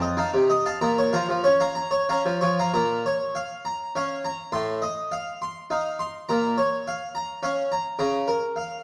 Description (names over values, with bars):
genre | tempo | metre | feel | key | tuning
classical, baroque-style suite movement for harpsichord | 61-71 BPM (dotted quarters) | 6/8 | rubato | Bb minor | A4 = 440 Hz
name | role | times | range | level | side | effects
harpsichord | solo | 0.0-8.8 s | F2 to C6 | -25 LUFS | equal | none
room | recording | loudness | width
moderate scoring stage reverb, RT60 1.6 s | worn, warbling old tape, cassette tape, warbly pitch drift | -25 LUFS | mono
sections
0.0-2.7 A section; 2.7-8.8 B section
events
none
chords
0.0 F7; 0.8 Bbm; 4.5 F7/A; 6.3 Bbm; 8.0 Bbm/Db